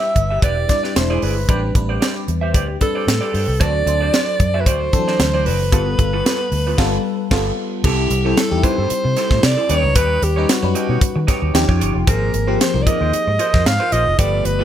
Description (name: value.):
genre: polished 1980s jazz-funk pop.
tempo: 113 BPM.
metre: 4/4.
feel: swing 54% on 16ths.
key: unclear.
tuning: A4 = 440 Hz.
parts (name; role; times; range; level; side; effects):
breathy alto saxophone; melody; 0.0-14.6 s; F#4 to F5; -21 LUFS; right 1 dB; none.
FM electric piano; accompaniment; 0.0-14.6 s; E3 to D5; -23 LUFS; left 3 dB; phaser, wide subtle chorus.
electric guitar through a small old amp; riff; 0.0-14.6 s; B3 to E5; -26 LUFS; right 4 dB; analog chorus.
vintage muted fingered electric bass; bass; 0.2-14.6 s; E1 to Eb3; -20 LUFS; equal; none.
tight funk drum kit; drums; 0.2-14.6 s; crash cymbal, hi-hat, kick drum, snare drum; -18 LUFS; equal; none.
room: light reverb, small room ambience.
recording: bright 1980s-style digital production.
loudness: -15 LUFS.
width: side -10 dB against mid.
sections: 0.0-7.8 A section; 7.8-14.6 B section.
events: band accent 6.8-7.8.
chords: 0.0 Em7; 1.0 E7alt; 1.5 Am11; 3.6 D7; 5.7 G9; 7.8 C6; 9.7 Eb7alt; 11.5 Eb9; 12.1 Ab69.